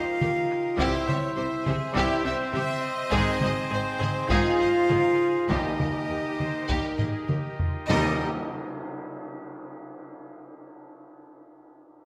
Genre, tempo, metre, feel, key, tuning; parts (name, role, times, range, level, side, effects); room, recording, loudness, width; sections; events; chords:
cinematic, epic orchestral film score; 102 BPM; 4/4; straight; A4 = 440 Hz
bright silver concert flute; second line; 0.0-8.2 s; C5 to F5; -35 LUFS; equal
bright symphonic violin section; second line; 0.0-8.2 s; G4 to E5; -40 LUFS; equal
mellow French horn section; sustained chords; 0.0-8.1 s; C4 to F4; -30 LUFS; equal
pipe organ, principal; sustained chords; 0.0-8.2 s; C4 to E5; -36 LUFS; equal
rich chamber violin section; melody; 0.2-8.2 s; G4 to E5; -36 LUFS; equal
clear symphonic viola section; accompaniment; 0.2-8.2 s; Eb4 to C5; -38 LUFS; equal
rich studio cello section; bass; 0.2-8.2 s; Eb2 to Eb3; -36 LUFS; equal
rich symphonic double bass section; bass; 0.2-8.2 s; Ab1 to Eb2; -38 LUFS; equal
taiko ensemble; drums; 0.2-7.9 s; -34 LUFS; equal
bright trombone section; sustained chords; 0.8-8.1 s; Eb3 to Ab3; -39 LUFS; equal
timpani; percussion; 5.5-8.2 s; Eb3; -38 LUFS; equal
tam-tam; percussion; 7.9-10.2 s; -39 LUFS; equal
wet scoring stage reverb, RT60 1.6 s; -26 LUFS; mono
0.0-7.9 A section; 7.9-10.3 B section
drum fill 7.0-7.9; band accent 7.9-8.5
0.0 Eb; 0.8 C; 3.1 Ab; 5.5 Eb